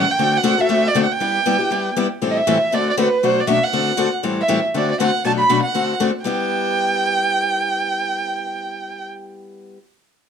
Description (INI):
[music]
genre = jazz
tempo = 238 BPM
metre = 4/4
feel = swing 57% on 8ths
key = G major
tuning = A4 = 441 Hz
[part]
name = dark violin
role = melody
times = 0.0-9.0 s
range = B4 to B5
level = -19 LUFS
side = right 3 dB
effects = none
[part]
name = picked steel-string acoustic guitar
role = accompaniment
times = 0.0-9.8 s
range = A2 to A4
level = -20 LUFS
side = left 4 dB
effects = none
[sound]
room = moderate studio reverb, RT60 0.6 s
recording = dark, warm production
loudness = -16 LUFS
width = side -7 dB against mid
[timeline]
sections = 0.0-2.2 A section; 2.2-6.2 B section; 6.2-8.3 C section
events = none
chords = 0.2 D7; 1.2 G6; 2.2 Am7; 2.7 D7; 3.2 Bm7; 3.7 D7; 4.2 Am7; 4.7 D7; 5.2 Bm7; 5.7 D7; 6.2 G6